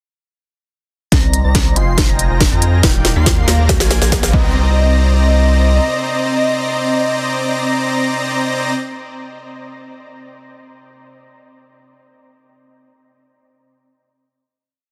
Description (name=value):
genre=future bass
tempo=140 BPM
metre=4/4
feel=half-time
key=C minor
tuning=A4 = 440 Hz
part: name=warm velvety synth lead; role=melody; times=1.1-8.7 s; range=D5 to G5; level=-25 LUFS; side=equal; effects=chorus, sidechain pumping, tape echo
part: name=airy dreamy lead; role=arpeggios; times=1.1-8.7 s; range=G5 to C6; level=-28 LUFS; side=equal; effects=chorus, sidechain pumping
part: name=dense compressed supersaw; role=riff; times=1.1-8.7 s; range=Bb3 to C6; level=-22 LUFS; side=equal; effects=sidechain pumping, low-pass filter
part: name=saturated sub bass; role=bass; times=1.1-5.8 s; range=Eb1 to F2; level=-16 LUFS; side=equal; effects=sidechain pumping
part: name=electronic kick drum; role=drums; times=1.1-4.4 s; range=none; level=-18 LUFS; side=equal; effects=overdrive
part: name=trap drum kit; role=drums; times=1.1-4.3 s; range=hi-hat, snare drum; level=-21 LUFS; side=equal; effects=none
part: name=riser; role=sound effects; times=2.9-4.5 s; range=none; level=-35 LUFS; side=equal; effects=none
room=light reverb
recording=dense, heavily limited modern master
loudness=-14 LUFS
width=mono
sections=1.1-4.5 build; 4.5-8.0 final hit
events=build-up 1.1-4.5; drum fill 1.1-4.5; filter sweep on supersaw synth 1.1-4.5; filter sweep on soft synth lead 1.1-4.5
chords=1.1 Cm7; 1.8 Fm11; 2.8 Ebmaj9; 3.7 Bb7; 4.3 Cm7